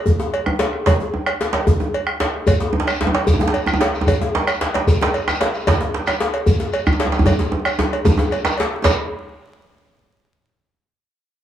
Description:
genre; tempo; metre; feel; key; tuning
west african traditional, West African drum ensemble; 150 BPM (dotted quarters); 12/8; straight; none; none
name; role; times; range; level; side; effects
bombo; percussion; 0.1-9.0 s; none; -20 LUFS; equal; none
djembe; percussion; 0.1-9.0 s; none; -21 LUFS; left 2 dB; none
cowbell; percussion; 0.3-9.0 s; none; -25 LUFS; right 2 dB; none
djembe; percussion; 0.5-9.0 s; none; -21 LUFS; right 2 dB; none
shekere; percussion; 2.5-9.0 s; none; -30 LUFS; left 1 dB; none
room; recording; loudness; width
moderate spring reverb, RT60 1.6 s; vinyl crackle, small room reverb; -16 LUFS; side -10 dB against mid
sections
0.0-8.8 A section; 8.8-10.4 B section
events
drum fill 7.3-8.8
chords
none

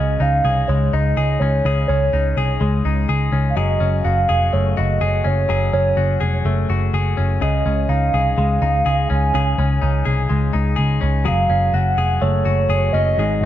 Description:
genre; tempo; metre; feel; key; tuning
jangly indie pop; 125 BPM; 4/4; straight; Db major; A4 = 440 Hz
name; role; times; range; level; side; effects
hollow clarinet-like synth lead; melody; 0.0-13.5 s; Db5 to Ab5; -21 LUFS; right 2 dB; chorus, analog delay
direct-recorded clean electric guitar; arpeggios; 0.0-13.5 s; Ab2 to Ab4; -22 LUFS; left 7 dB; analog delay
vintage muted picked electric bass; bass; 0.0-13.5 s; F1 to Db2; -18 LUFS; right 1 dB; none
room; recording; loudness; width
light reverb; echo-heavy mix; -16 LUFS; side -12 dB against mid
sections
0.0-13.5 A section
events
none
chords
0.0 Dbsus2; 3.6 Gbmadd9; 7.4 Dbadd9; 11.3 Gbmadd9

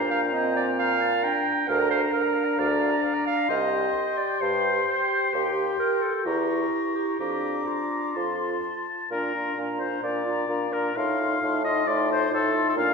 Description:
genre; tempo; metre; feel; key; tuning
quick classical-period movement for wind quintet; 131 BPM; 4/4; rubato; Bb major; A4 = 440 Hz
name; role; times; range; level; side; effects
silver concert flute; melody; 0.0-12.9 s; G5 to D6; -32 LUFS; left 6 dB; none
warm oboe; second line; 0.0-12.9 s; A4 to Bb5; -29 LUFS; left 3 dB; none
bright clarinet; accompaniment; 0.0-12.9 s; F4 to G5; -27 LUFS; right 5 dB; none
warm French horn; accompaniment; 0.0-12.9 s; C4 to G4; -30 LUFS; left 2 dB; none
warm bassoon; bass; 0.0-12.9 s; C2 to Bb2; -29 LUFS; right 1 dB; none
room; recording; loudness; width
wet recital hall reverb, RT60 1.6 s; recorded in a church or concert hall, nothing above 11.0 kHz; -22 LUFS; side -4 dB against mid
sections
0.0-9.1 A section; 9.1-12.9 B section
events
none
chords
0.0 Gm/Bb; 1.7 Bb/D; 3.5 Cm; 5.3 Cm/Eb; 6.3 Edim7; 7.2 Bb/F; 8.2 F; 9.1 Bb; 11.0 F7/A

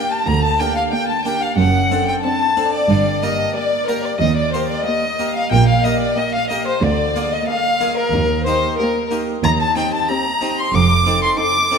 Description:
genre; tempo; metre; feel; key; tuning
classical, baroque-style concerto movement with solo episodes; 92 BPM; 4/4; straight; unclear; A4 = 443 Hz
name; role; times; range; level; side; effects
rich chamber violin section; melody; 0.0-11.8 s; D4 to A4; -33 LUFS; left 9 dB; none
rich violin; melody; 0.0-11.8 s; Bb4 to D6; -20 LUFS; left 2 dB; none
rich chamber violin section; second line; 0.0-11.8 s; Bb4 to D6; -22 LUFS; left 3 dB; none
harpsichord; accompaniment; 0.0-11.8 s; D2 to Bb4; -24 LUFS; equal; none
warm chamber viola section; accompaniment; 0.0-11.8 s; Bb3 to Eb4; -30 LUFS; right 2 dB; none
rich chamber double bass section; bass; 0.3-11.3 s; F1 to Eb2; -22 LUFS; right 5 dB; none
warm chamber cello section; bass; 0.3-11.3 s; D2 to Bb2; -23 LUFS; right 4 dB; none
room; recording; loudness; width
wet concert hall reverb, RT60 2.4 s; none; -15 LUFS; side -6 dB against mid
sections
0.0-11.8 A section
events
none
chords
0.0 Gm; 1.6 D7/F#; 2.9 Gm; 4.2 Eb; 6.8 Bb7/D; 8.1 Eb; 9.4 Cm/Eb; 10.7 F7

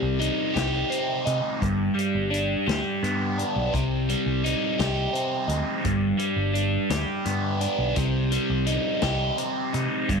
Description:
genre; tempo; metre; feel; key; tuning
psychedelic rock; 57 BPM (dotted quarters); 6/8; straight; unclear; A4 = 440 Hz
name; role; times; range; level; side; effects
overdriven electric guitar; riff; 0.0-10.2 s; G2 to G4; -24 LUFS; equal; phaser
picked electric bass; bass; 0.0-10.2 s; G1 to C3; -27 LUFS; equal; none
vintage drum kit; drums; 0.2-10.2 s; hi-hat, kick drum, snare drum; -32 LUFS; left 4 dB; none
room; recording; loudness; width
little or no reverb; 1960s-style stereo; -23 LUFS; side -5 dB against mid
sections
0.0-10.2 A section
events
none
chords
0.0 Cm; 1.6 G; 3.7 Cm; 5.8 G; 8.0 Cm

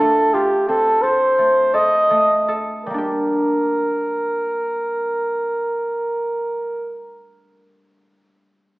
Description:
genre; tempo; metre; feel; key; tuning
contemporary instrumental, chamber music in an uneven meter; 154-180 BPM (eighths); 9/8; straight; G minor; A4 = 440 Hz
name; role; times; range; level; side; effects
mellow flugelhorn; melody; 0.0-7.0 s; G4 to Eb5; -17 LUFS; right 1 dB; none
concert harp; arpeggios; 0.0-7.1 s; G3 to A4; -24 LUFS; equal; none
room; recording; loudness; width
wet concert hall reverb, RT60 1.7 s; recorded in a church or concert hall, small speaker sound; -17 LUFS; side -21 dB against mid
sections
0.0-2.9 A section; 2.9-6.3 B section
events
slowing down 0.0-2.9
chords
0.0 F7; 2.9 Gm

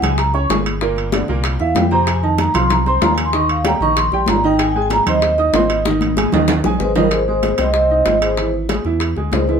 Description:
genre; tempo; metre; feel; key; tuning
Afro-Cuban jazz; 190 BPM; 4/4; straight; Ab major; A4 = 440 Hz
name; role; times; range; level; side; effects
vibraphone with soft mallets; melody; 0.0-9.6 s; Bb4 to Db6; -17 LUFS; right 1 dB; none
clear upright piano; accompaniment; 0.0-9.6 s; Bb2 to Eb6; -21 LUFS; right 4 dB; none
round analog bass; bass; 0.0-9.6 s; G1 to F2; -21 LUFS; equal; none
bongos; percussion; 0.0-9.6 s; none; -25 LUFS; left 8 dB; none
congas; percussion; 0.0-9.6 s; none; -23 LUFS; left 1 dB; none
timbales; percussion; 0.0-9.5 s; none; -24 LUFS; right 4 dB; none
bright trombone; second line; 6.8-9.6 s; G3 to C4; -24 LUFS; left 6 dB; none
room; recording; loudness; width
light reverb; minimal, uncompressed stereo recording; -14 LUFS; side -7 dB against mid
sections
0.0-7.1 A section; 7.1-9.6 B section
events
vibraphone solo 0.0-7.1; drum fill 5.9-7.1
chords
0.0 Db5; 0.8 Gmadd11; 1.4 C7; 2.1 F5; 3.3 Eb6; 4.6 Ab; 8.4 Dbmmaj7

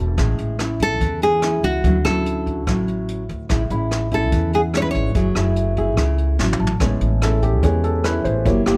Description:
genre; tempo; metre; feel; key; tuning
bossa nova; 145 BPM; 4/4; straight; A major; A4 = 440 Hz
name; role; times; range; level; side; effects
nylon-string guitar; accompaniment; 0.0-8.8 s; A2 to G#4; -25 LUFS; equal; none
warm baby grand piano; accompaniment; 0.0-0.3, 3.7-8.8 s; G#3 to B5; -28 LUFS; equal; none
upright bass; bass; 0.0-8.8 s; E1 to E2; -24 LUFS; equal; none
jazz brush drum kit; drums; 0.2-8.8 s; hi-hat, kick drum, rim click, snare drum, toms; -27 LUFS; equal; none
nylon-string guitar; melody; 0.8-6.4 s; F#4 to C#5; -23 LUFS; equal; none
room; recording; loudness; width
little or no reverb; close, detailed microphones; -20 LUFS; mono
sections
0.0-6.8 A section; 6.8-8.8 B section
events
drum fill 6.4-6.8; grand piano solo 6.8-8.8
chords
0.2 Amaj7; 1.8 Dmaj9; 3.5 Amaj7; 5.2 F#m9; 6.4 A6; 6.8 Amaj7

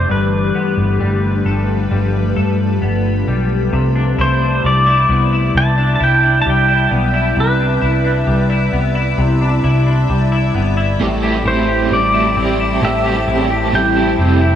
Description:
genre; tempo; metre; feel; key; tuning
dream pop; 66 BPM; 4/4; straight; C major; A4 = 440 Hz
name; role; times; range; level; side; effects
pedal steel guitar; melody; 0.0-14.6 s; B4 to A5; -18 LUFS; right 1 dB; tape echo
ethereal airy pad; sustained chords; 0.0-14.6 s; F3 to B5; -21 LUFS; left 1 dB; ensemble chorus, built-in reverb, phaser
semi-hollow electric guitar; arpeggios; 0.0-14.6 s; G2 to A4; -20 LUFS; left 3 dB; analog chorus, tape echo
vintage muted picked electric bass; bass; 0.0-14.6 s; F1 to G2; -16 LUFS; equal; none
crunchy overdriven guitar; accompaniment; 11.0-14.6 s; A2 to G4; -18 LUFS; right 4 dB; tremolo, ensemble chorus
room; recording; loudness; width
moderate huge ambient reverb, RT60 7.0 s; small room ambience; -13 LUFS; side -10 dB against mid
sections
0.0-3.7 A section; 3.7-14.6 B section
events
none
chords
0.1 G9; 3.7 Cmaj9; 11.0 Am7

